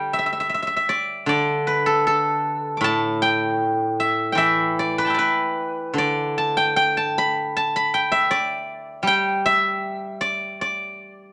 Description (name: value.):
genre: chinese traditional, Chinese solo plucked strings.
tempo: 77 BPM.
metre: 2/4.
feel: rubato.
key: D zhi mode.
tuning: A4 = 440 Hz.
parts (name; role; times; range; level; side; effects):
steel-string zither; solo; 0.0-11.3 s; A2 to D6; -22 LUFS; equal; none.
room: moderate studio reverb, RT60 0.7 s.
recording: none.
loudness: -21 LUFS.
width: mono.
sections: 0.0-11.3 A section.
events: none.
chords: none.